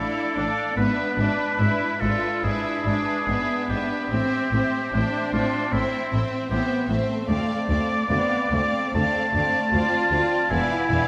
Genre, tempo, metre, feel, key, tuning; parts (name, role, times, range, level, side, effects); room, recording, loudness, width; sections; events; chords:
classical, slow romantic movement for symphony orchestra; 74 BPM; 4/4; uneven beats, rubato; A minor; A4 = 441 Hz
rich studio violin section; melody; 0.0-11.1 s; E5 to F5; -39 LUFS; equal
clear oboe; second line; 0.0-11.1 s; E4 to A5; -28 LUFS; equal
rich studio violin section; second line; 0.0-11.1 s; B3 to D5; -32 LUFS; equal
rich studio viola section; accompaniment; 0.0-11.1 s; A3 to F4; -30 LUFS; equal
rich studio double bass section; bass; 0.0-11.0 s; E1 to D2; -32 LUFS; equal
warm chamber cello section; bass; 0.0-11.0 s; D2 to A2; -32 LUFS; equal
wet concert hall reverb, RT60 2.3 s; -23 LUFS; mono
0.0-11.1 A section
0.0 Dm; 0.8 E7/G#; 4.1 Am; 7.3 Dm7; 10.5 E7b9